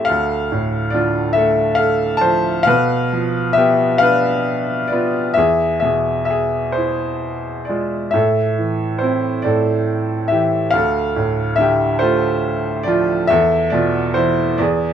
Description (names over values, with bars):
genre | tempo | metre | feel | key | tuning
classical, lyrical solo piano | 42-48 BPM (dotted quarters) | 6/8 | rubato | unclear | A4 = 440 Hz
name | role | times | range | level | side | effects
clear upright piano | solo | 0.0-14.9 s | D2 to A5 | -15 LUFS | equal | none
room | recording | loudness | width
light reverb | none | -15 LUFS | side -9 dB against mid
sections
0.0-14.9 A section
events
none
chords
0.1 Dm7; 2.7 Bdim; 5.4 E; 8.1 Am; 10.7 Dm; 13.3 Esus4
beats
| 0.09 1.37 | 2.67 4.02 | 5.36 6.76 | 8.14 9.45 | 10.74 12.01 | 13.29 14.59